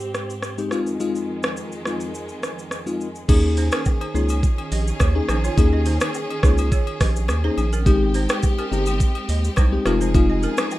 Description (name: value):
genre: afrobeats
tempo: 105 BPM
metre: 4/4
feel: straight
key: unclear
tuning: A4 = 439 Hz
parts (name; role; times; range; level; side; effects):
- warm studio string section; sustained chords; 0.0-10.8 s; F2 to Ab4; -30 LUFS; right 1 dB; low-pass filter, plate reverb
- afro-pop drum kit; drums; 0.0-10.8 s; crash cymbal, hi-hat, kick drum, rim click, shaker; -20 LUFS; equal; vintage 12-bit sampler grit
- crystalline FM electric piano; accompaniment; 0.6-10.8 s; Ab3 to Ab4; -24 LUFS; left 3 dB; chorus, low-pass filter, plate reverb
- round analog bass; bass; 3.3-10.5 s; F1 to Eb2; -21 LUFS; equal; none
- agogo bells and woodblock; percussion; 3.3-10.8 s; none; -35 LUFS; left 6 dB; none
- balafon; riff; 3.6-10.5 s; C4 to Eb5; -31 LUFS; right 6 dB; none
room: light reverb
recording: rough home demo mix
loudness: -18 LUFS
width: side -16 dB against mid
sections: 0.0-3.3 A section; 3.3-10.8 B section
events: none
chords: 0.0 Abmaj7; 0.7 Fm7; 3.3 Eb7sus4; 7.9 Abmaj7; 9.9 Fm7